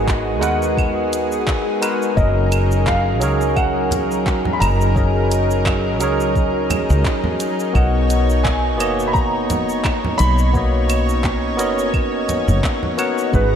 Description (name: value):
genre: sunset chillout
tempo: 86 BPM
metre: 4/4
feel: swing 55% on 16ths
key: unclear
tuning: A4 = 440 Hz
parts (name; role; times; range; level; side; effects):
- warm grand piano; melody; 0.0-13.6 s; B4 to B5; -25 LUFS; equal; analog chorus, tape echo
- barky tine electric piano; accompaniment; 0.0-13.6 s; F#3 to F#5; -22 LUFS; moving between left 5 dB and right 4 dB; overdrive, auto-pan, ping-pong delay
- lush unison pad; sustained chords; 0.0-13.6 s; B2 to A#5; -23 LUFS; left 1 dB; chorus
- woody fretless electric bass; bass; 0.0-13.6 s; F#1 to D#2; -19 LUFS; equal; none
- electronic kick drum; drums; 0.1-13.5 s; none; -20 LUFS; equal; studio reverb
- smooth R&B drum kit; drums; 0.1-13.5 s; claves, handclaps, hi-hat, shaker; -28 LUFS; right 1 dB; studio reverb
- congas; percussion; 3.9-13.0 s; none; -26 LUFS; right 2 dB; none
room: moderate plate reverb, RT60 3.6 s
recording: dreamy mix soaked in reverb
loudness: -16 LUFS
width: side -8 dB against mid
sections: 0.0-13.6 A section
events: none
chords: 0.0 G#m9; 2.2 F#69; 7.8 Bmaj9